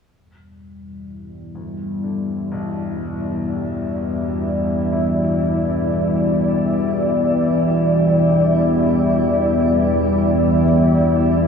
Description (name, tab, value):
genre	dark ambient drone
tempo	free time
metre	none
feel	none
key	E minor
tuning	A4 = 439 Hz
part	deep dark ambient pad	sustained chords	0.8-11.5 s	G3 to D5	-19 LUFS	left 1 dB	chorus, built-in reverb, shimmer reverb
part	analog drone	drone	1.0-11.5 s	E2 to B2	-20 LUFS	equal	chorus
part	warm grand piano	arpeggios	1.5-11.5 s	B1 to E4	-35 LUFS	equal	tape echo, shimmer reverb
room	wet huge ambient reverb, RT60 7.9 s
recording	worn, warbling old tape, cassette tape, warbly pitch drift, studio ambience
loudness	-16 LUFS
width	side -6 dB against mid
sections	0.1-11.5 A section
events	fade-in on synth drone 0.1-11.5; fade-in on grand piano 0.1-11.5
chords	0.1 Em7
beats	free time